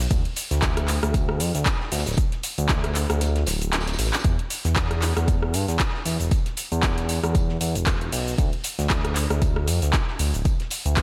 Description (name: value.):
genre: deep house.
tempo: 116 BPM.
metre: 4/4.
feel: swing 56% on 16ths.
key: unclear.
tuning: A4 = 439 Hz.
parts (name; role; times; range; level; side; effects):
smooth synth bass; bass; 0.0-11.0 s; D1 to G2; -26 LUFS; equal; sidechain pumping.
deep house drum kit; drums; 0.0-11.0 s; handclaps, hi-hat, rim click, shaker; -29 LUFS; equal; overdrive.
damped 70s drum kit; drums; 0.1-11.0 s; hi-hat, snare drum, tambourine; -40 LUFS; equal; none.
electronic kick drum; drums; 0.1-11.0 s; none; -26 LUFS; equal; overdrive.
room: light reverb.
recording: none.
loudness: -24 LUFS.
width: mono.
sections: 0.0-11.0 A section.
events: kick drops out 3.2-4.2; drum fill 3.7-4.2.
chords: none.